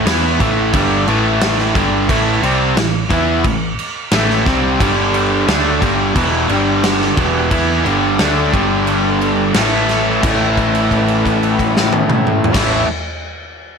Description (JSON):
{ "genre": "hard rock", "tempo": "88 BPM", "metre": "4/4", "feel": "straight", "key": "unclear", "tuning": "A4 = 439 Hz", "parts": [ { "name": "biting overdriven guitar", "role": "riff", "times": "0.0-12.9 s", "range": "E2 to E4", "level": "-19 LUFS", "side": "equal", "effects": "none" }, { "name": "cranked stack guitar", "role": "riff", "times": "0.0-12.9 s", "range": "E2 to E4", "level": "-19 LUFS", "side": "left 10 dB", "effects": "overdrive" }, { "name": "cranked stack guitar", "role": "riff", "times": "0.0-12.9 s", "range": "E2 to E4", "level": "-19 LUFS", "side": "right 10 dB", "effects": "overdrive" }, { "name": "hollow-body short-scale picked electric bass", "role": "bass", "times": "0.0-12.8 s", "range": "E1 to E2", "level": "-22 LUFS", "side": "equal", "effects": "none" }, { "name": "big rock drum kit", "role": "drums", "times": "0.1-12.7 s", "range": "crash cymbal, kick drum, snare drum, toms", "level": "-18 LUFS", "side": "equal", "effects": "none" }, { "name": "overdriven tonewheel organ", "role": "sustained chords", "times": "4.8-12.8 s", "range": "A3 to A5", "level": "-26 LUFS", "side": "equal", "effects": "none" } ], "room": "light reverb, studio reverb", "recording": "none", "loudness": "-12 LUFS", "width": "side -6 dB against mid", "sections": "0.0-10.2 A section; 10.2-13.0 B section", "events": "held note 10.2-12.5", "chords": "0.0 A5; 4.8 G5; 9.6 A5; 10.2 A", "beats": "0.07 0.74 1.42 | 2.09 2.77 3.45 4.12 | 4.80 5.48 6.16 6.83 | 7.51 8.19 8.87 9.55 | 10.23 10.91 11.59 12.27" }